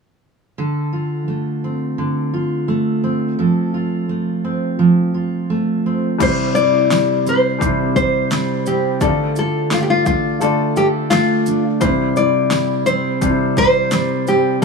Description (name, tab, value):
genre	acoustic pop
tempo	86 BPM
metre	4/4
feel	swing 60% on 16ths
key	unclear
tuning	A4 = 440 Hz
part	fingerpicked steel-string acoustic guitar	accompaniment	0.6-14.6 s	C3 to C5	-18 LUFS	right 3 dB	none
part	nylon-string guitar	melody	6.2-14.6 s	F4 to D5	-17 LUFS	left 2 dB	none
part	felt-muted upright piano	accompaniment	6.2-14.6 s	G3 to D5	-22 LUFS	left 9 dB	none
part	deep house drum kit	drums	6.2-14.6 s	crash cymbal, kick drum, shaker, snare drum	-23 LUFS	left 2 dB	overdrive
room	little or no reverb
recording	none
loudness	-15 LUFS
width	side -4 dB against mid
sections	0.6-6.2 A section; 6.2-14.6 B section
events	none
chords	0.6 Dm7; 3.4 F; 6.2 C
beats	| 0.58 1.28 1.99 2.69 | 3.39 4.10 4.80 5.50 | 6.21 6.91 7.61 8.31 | 9.01 9.71 10.42 11.12 | 11.82 12.52 13.22 13.93 | 14.63